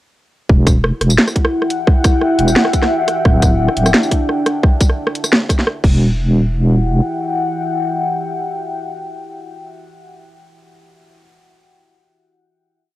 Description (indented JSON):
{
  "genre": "half-time drum and bass",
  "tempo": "174 BPM",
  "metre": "4/4",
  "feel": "half-time",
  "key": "E minor",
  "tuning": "A4 = 440 Hz",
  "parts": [
    { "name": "deep dark ambient pad", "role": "sustained chords", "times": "1.3-9.5 s", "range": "D4 to G5", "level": "-19 LUFS", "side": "left 1 dB", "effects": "chorus, built-in reverb, sidechain pumping, cassette tape" },
    { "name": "deep soft wobble bass", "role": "bass", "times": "0.5-7.0 s", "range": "D1 to E1", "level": "-13 LUFS", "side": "equal", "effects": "chorus" },
    { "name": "electronic kick drum", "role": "drums", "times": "0.5-5.9 s", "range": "none", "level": "-12 LUFS", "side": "equal", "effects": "overdrive, cassette tape" },
    { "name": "drum and bass drum kit", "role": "drums", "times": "0.7-5.9 s", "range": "crash cymbal, hi-hat, rim click, snare drum, tambourine", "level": "-16 LUFS", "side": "equal", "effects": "overdrive, cassette tape" }
  ],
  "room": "light reverb",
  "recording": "home recording on cassette",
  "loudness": "-12 LUFS",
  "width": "side -16 dB against mid",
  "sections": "0.5-6.0 drop; 6.0-8.8 final chord",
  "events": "drop 0.5-6.0",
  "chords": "0.5 Emadd9; 3.3 D; 5.8 N.C.; 6.0 Emadd9"
}